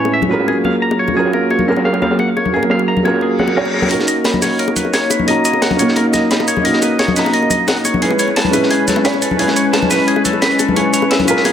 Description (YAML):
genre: liquid drum and bass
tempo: 175 BPM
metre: 4/4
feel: straight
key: B major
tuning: A4 = 440 Hz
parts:
  - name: felt-muted upright piano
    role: accompaniment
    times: 0.0-11.5 s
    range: A2 to A#5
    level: -18 LUFS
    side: right 2 dB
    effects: tape echo
  - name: warm analog pad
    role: sustained chords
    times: 0.0-11.5 s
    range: E#3 to D#5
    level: -18 LUFS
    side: left 1 dB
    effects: chorus
  - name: clean electric guitar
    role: arpeggios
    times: 0.0-11.5 s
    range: G#4 to B5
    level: -19 LUFS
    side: equal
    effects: low-pass filter, digital delay
  - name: crunchy breakbeat drum kit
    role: drums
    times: 0.1-11.5 s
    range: hi-hat, snare drum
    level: -21 LUFS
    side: equal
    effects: high-pass filter on hats, low-pass filter on hats, high-pass filter on snare, low-pass filter on snare, high-pass filter on room, low-pass filter on room
  - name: bongos and congas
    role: percussion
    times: 0.1-11.5 s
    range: none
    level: -22 LUFS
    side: left 5 dB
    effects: none
  - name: reverse cymbal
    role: sound effects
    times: 3.3-3.9 s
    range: none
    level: -24 LUFS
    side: left 3 dB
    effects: none
  - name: electronic hi-hat and cabasa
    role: drums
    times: 3.9-11.5 s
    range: none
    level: -22 LUFS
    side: right 2 dB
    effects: none
room: moderate digital room reverb, RT60 1.1 s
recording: none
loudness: -12 LUFS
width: side -9 dB against mid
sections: 0.0-3.9 A section; 3.9-11.5 B section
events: reverse cymbal 3.3-3.9; build-up 3.9-11.5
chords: 0.5 F#maj9; 3.9 Bmaj9; 8.0 Amaj9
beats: 0.14 0.48 0.82 | 1.16 1.51 1.85 2.19 | 2.54 2.88 3.22 3.56 | 3.91 4.25 4.59 4.94 | 5.28 5.62 5.96 6.31 | 6.65 6.99 7.34 7.68 | 8.02 8.36 8.71 9.05 | 9.39 9.74 10.08 10.42 | 10.76 11.11 11.45